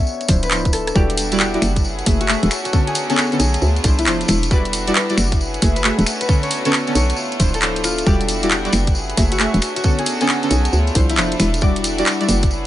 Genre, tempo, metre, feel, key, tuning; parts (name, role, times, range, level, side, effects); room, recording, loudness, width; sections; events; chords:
UK garage, two-step garage; 135 BPM; 4/4; swing 65% on 16ths; A4 = 441 Hz
concert harp; melody; 0.0-12.7 s; E4 to E5; -25 LUFS; left 3 dB
airy breathy pad; texture; 0.0-12.7 s; B3 to F#5; -29 LUFS; right 1 dB; chorus, sidechain pumping
tambourine; percussion; 0.1-12.6 s; -28 LUFS; left 2 dB
garage drum kit; drums; 0.2-12.5 s; finger snaps, handclaps, hi-hat, rim click; -20 LUFS; equal
deep mellow chord stab; stabs; 0.3-12.3 s; D3 to E5; -22 LUFS; equal; chorus, cassette tape, digital delay
hollow knocking FM bass; bass; 0.3-12.7 s; D1 to D2; -20 LUFS; equal
electronic kick drum; drums; 0.3-12.5 s; -17 LUFS; equal
clear studio violin section; sustained chords; 1.0-12.7 s; G3 to G#4; -28 LUFS; equal; sidechain pumping
light reverb, small room ambience; nothing above 10.5 kHz; -15 LUFS; side -13 dB against mid
0.0-12.7 A section
drum fill 0.7
0.1 Dm9; 1.0 Em9; 1.8 F#m9; 2.5 Bm9; 3.6 Dm9; 4.5 Em9; 5.4 F#m9; 6.1 Bm9; 7.2 Dm9; 8.1 Em9; 9.0 F#m9; 9.6 Bm9; 10.7 Dm9; 11.6 Em9